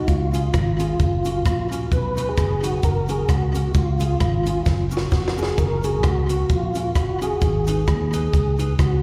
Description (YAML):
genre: ska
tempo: 131 BPM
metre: 4/4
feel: swing 56% on 8ths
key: F# major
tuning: A4 = 440 Hz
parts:
  - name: mellow tonewheel organ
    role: melody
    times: 0.0-9.0 s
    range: E#4 to B4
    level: -27 LUFS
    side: equal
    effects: chorus vibrato, slow rotary speaker, tape echo, slapback echo
  - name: mellow electric guitar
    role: riff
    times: 0.1-5.3 s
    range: E#2 to C#3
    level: -35 LUFS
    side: equal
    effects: none
  - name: fingered electric bass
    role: bass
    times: 0.1-9.0 s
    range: E#1 to D#2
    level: -25 LUFS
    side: equal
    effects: none
  - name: compact cocktail drum kit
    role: drums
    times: 0.1-8.9 s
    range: hi-hat, kick drum, rim click, snare drum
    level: -25 LUFS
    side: equal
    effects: tape echo
  - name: cabasa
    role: percussion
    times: 0.1-8.9 s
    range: none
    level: -47 LUFS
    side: equal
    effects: tape echo, slapback echo
  - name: mellow electric guitar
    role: accompaniment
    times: 0.3-8.7 s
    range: C#4 to B4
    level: -35 LUFS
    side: equal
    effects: analog chorus, tape echo, slapback echo
room: little or no reverb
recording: live gig heard through the venue's PA, recital hall reverb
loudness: -21 LUFS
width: mono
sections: 0.0-5.6 A section; 5.6-9.0 B section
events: drum fill 4.7-5.6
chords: 0.1 C#; 1.0 F#; 1.9 B; 2.8 F#; 3.7 C#; 4.7 F#; 7.4 G#m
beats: | 0.08 0.54 1.00 1.46 | 1.92 2.37 2.83 3.29 | 3.75 4.21 4.67 5.12 | 5.58 6.04 6.50 6.96 | 7.42 7.88 8.33 8.79